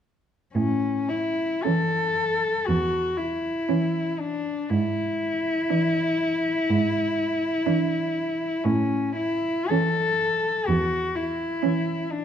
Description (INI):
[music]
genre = classical, lyrical piece for cello ensemble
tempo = 52-63 BPM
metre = 4/4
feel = rubato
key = A major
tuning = A4 = 440 Hz
[part]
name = dark cello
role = melody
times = 0.6-12.2 s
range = C#4 to A4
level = -24 LUFS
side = left 2 dB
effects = none
[part]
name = warm cello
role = bass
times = 0.6-11.4 s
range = E2 to A2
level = -26 LUFS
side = right 3 dB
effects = none
[part]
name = warm cello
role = second line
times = 1.7-12.2 s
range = C#4 to D4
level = -29 LUFS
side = right 11 dB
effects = none
[part]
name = warm cello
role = accompaniment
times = 1.7-12.2 s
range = E3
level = -28 LUFS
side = right 1 dB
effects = none
[sound]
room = moderate recital hall reverb, RT60 1.4 s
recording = dark, warm production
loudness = -22 LUFS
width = side -9 dB against mid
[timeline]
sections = 0.6-12.2 A section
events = none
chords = 0.6 A; 4.7 E7/G#; 8.6 A